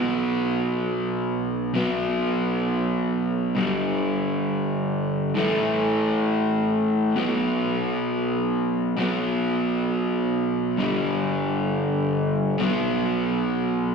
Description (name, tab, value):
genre	rock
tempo	free time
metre	none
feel	none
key	unclear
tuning	A4 = 435 Hz
part	crunchy overdriven guitar	solo	0.0-13.9 s	G2 to B3	-22 LUFS	equal	none
room	light reverb, digital ambience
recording	live gig heard through the venue's PA, recital hall reverb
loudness	-22 LUFS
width	side -5 dB against mid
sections	0.0-13.9 A section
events	none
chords	0.0 B5; 3.6 G5; 5.4 A5; 7.2 B5; 10.8 G5; 12.6 B5